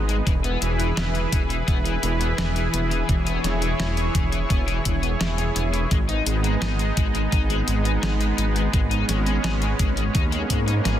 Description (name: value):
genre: synthwave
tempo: 85 BPM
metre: 4/4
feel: straight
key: G# minor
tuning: A4 = 441 Hz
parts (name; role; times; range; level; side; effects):
- lush unison pad; sustained chords; 0.0-11.0 s; E3 to C#5; -26 LUFS; right 1 dB; chorus, sidechain pumping
- wide detuned saw bass; bass; 0.0-11.0 s; E1 to G#2; -24 LUFS; equal; chorus
- overdriven semi-hollow guitar; riff; 0.1-10.9 s; E3 to G#4; -30 LUFS; left 5 dB; analog chorus, digital delay
- detuned 8-bit digital drum machine; drums; 0.1-11.0 s; hi-hat, snare drum; -30 LUFS; left 1 dB; none
- electronic kick drum; drums; 0.3-10.6 s; none; -23 LUFS; equal; none
- swell; sound effects; 10.5-11.0 s; none; -31 LUFS; equal; none
room: light reverb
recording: dense, heavily limited modern master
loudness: -20 LUFS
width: side -11 dB against mid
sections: 0.0-11.0 A section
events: swell 10.5-11.0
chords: 0.3 E; 5.9 G#m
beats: | 0.27 0.97 1.68 2.38 | 3.09 3.79 4.50 5.21 | 5.91 6.62 7.33 8.03 | 8.74 9.44 10.15 10.85